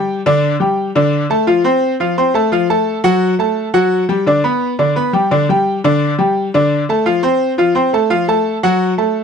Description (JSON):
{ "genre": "latin", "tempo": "172 BPM", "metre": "4/4", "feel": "straight", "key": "unclear", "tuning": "A4 = 439 Hz", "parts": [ { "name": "bright upright piano", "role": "solo", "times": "0.0-9.2 s", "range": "D3 to C6", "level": "-12 LUFS", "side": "equal", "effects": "none" } ], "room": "light reverb", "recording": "dark, warm production", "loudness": "-12 LUFS", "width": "side -6 dB against mid", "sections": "0.0-9.2 A section", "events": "none", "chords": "0.1 Dsus4; 1.5 F; 2.9 F#m; 4.3 G; 5.7 Dsus4; 7.1 F; 8.5 F#m" }